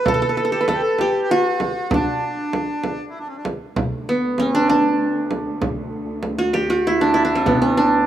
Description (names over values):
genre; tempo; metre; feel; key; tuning
Arabic maqam ensemble; 65 BPM (dotted quarters); 6/8; straight; D maqam rast; A4 = 443 Hz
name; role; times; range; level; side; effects
qanun; melody; 0.0-8.1 s; B3 to B4; -18 LUFS; right 1 dB; none
accordion; second line; 0.0-3.5 s; C4+50c to B4; -25 LUFS; left 1 dB; none
darbuka; percussion; 0.1-7.9 s; none; -31 LUFS; equal; none
frame drum; percussion; 0.1-7.6 s; none; -26 LUFS; right 2 dB; none
muted symphonic cello section; drone; 3.8-8.1 s; D2; -29 LUFS; right 1 dB; none
room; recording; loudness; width
moderate plate reverb, RT60 3.6 s; rough home demo mix; -17 LUFS; side -11 dB against mid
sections
0.0-3.8 A section; 3.8-8.1 B section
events
none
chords
none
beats
| 0.07 0.99 | 1.92 2.84 | 3.77 4.69 | 5.62 6.54 | 7.47